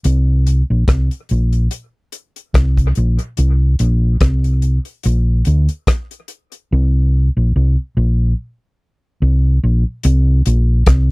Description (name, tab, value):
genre	dub reggae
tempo	72 BPM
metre	4/4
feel	swing 56% on 16ths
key	unclear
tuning	A4 = 440 Hz
part	damped 70s drum kit	drums	0.0-11.1 s	hi-hat, kick drum, rim click	-16 LUFS	equal	none
part	hollow-body short-scale fingered electric bass	bass	0.1-11.1 s	Bb1 to D2	-12 LUFS	equal	none
room	little or no reverb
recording	dry, close 1970s-style studio recording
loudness	-13 LUFS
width	side -28 dB against mid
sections	0.0-10.0 A section; 10.0-11.1 B section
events	part muted 6.7-10.0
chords	none